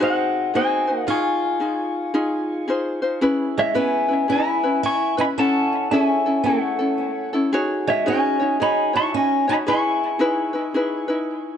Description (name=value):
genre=Hawaiian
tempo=112 BPM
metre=4/4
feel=swing 63% on 8ths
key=Db major, C# minor from 3.2 s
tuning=A4 = 439 Hz
part: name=pedal steel guitar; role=melody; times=0.0-11.2 s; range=C#5 to Db6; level=-22 LUFS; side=left 3 dB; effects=ping-pong delay
part: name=fingerpicked swing-style acoustic guitar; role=second line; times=0.0-11.2 s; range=G#3 to F4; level=-26 LUFS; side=right 7 dB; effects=ping-pong delay
part: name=ukulele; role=accompaniment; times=0.0-11.6 s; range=C#4 to C#5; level=-22 LUFS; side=left 1 dB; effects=none
room=light reverb, small room ambience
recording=dark, warm production, nothing above 10.8 kHz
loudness=-18 LUFS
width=side -8 dB against mid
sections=0.0-3.2 A section; 3.2-11.6 B section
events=none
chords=0.0 Ab7; 1.1 Dbmaj9; 3.2 C#m7; 5.4 F#m9; 7.5 G#7sus4; 9.7 C#m9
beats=0.53 | 1.07 1.61 2.15 2.68 | 3.22 3.76 4.29 4.83 | 5.37 5.91 6.44 6.98 | 7.52 8.05 8.59 9.13 | 9.66 10.20 10.74 11.27